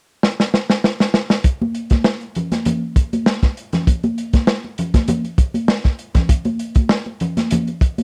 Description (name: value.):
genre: funk.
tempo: 99 BPM.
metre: 4/4.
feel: straight.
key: none.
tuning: none.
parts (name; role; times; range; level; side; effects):
crunchy breakbeat drum kit; drums; 0.2-8.0 s; hi-hat, kick drum, snare drum; -18 LUFS; equal; none.
congas; percussion; 1.6-8.0 s; none; -23 LUFS; equal; none.
room: little or no reverb.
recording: dry, close 1970s-style studio recording.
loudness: -18 LUFS.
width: mono.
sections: 0.0-1.4 A section; 1.4-8.0 B section.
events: drum fill 0.2-1.4.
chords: none.